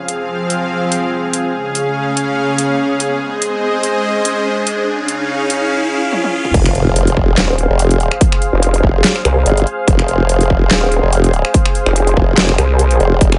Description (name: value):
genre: heavy wobble dubstep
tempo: 144 BPM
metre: 4/4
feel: swing 55% on 16ths, half-time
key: F minor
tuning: A4 = 440 Hz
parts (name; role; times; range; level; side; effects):
- supersaw pad; sustained chords; 0.0-13.4 s; Db3 to F5; -20 LUFS; equal; sidechain pumping, low-pass filter
- riser and impact; sound effects; 1.6-8.2 s; none; -26 LUFS; equal; none
- dubstep drum kit; drums; 0.1-13.4 s; crash cymbal, finger snaps, handclaps, hi-hat, snare drum, toms; -20 LUFS; equal; overdrive
- formant-sweep wobble bass; bass; 6.5-13.4 s; F1 to G1; -16 LUFS; equal; chorus, overdrive
- electronic kick drum; drums; 6.5-13.3 s; none; -16 LUFS; equal; overdrive
- vowel-sweep wobble bass; bass; 7.4-13.0 s; Eb1 to C2; -15 LUFS; equal; chorus, overdrive
room: light reverb, digital ambience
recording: high-pass filter, nothing above 10.7 kHz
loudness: -15 LUFS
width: mono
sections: 0.0-6.5 A section; 6.5-13.4 B section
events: build-up 0.0-6.5; riser 1.6-6.5; drum fill 6.1-6.5; drop 6.5-13.4; impact 6.5-8.2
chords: 0.0 Fm; 1.5 Db; 3.2 Ab; 4.9 Db; 6.5 Fm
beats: 0.29 0.71 1.13 | 1.54 1.96 2.38 2.79 | 3.21 3.63 4.04 4.46 | 4.88 5.29 5.71 6.13 | 6.54 6.96 7.38 7.79 | 8.21 8.63 9.04 9.46 | 9.88 10.29 10.71 11.13 | 11.54 11.96 12.38 12.79 | 13.21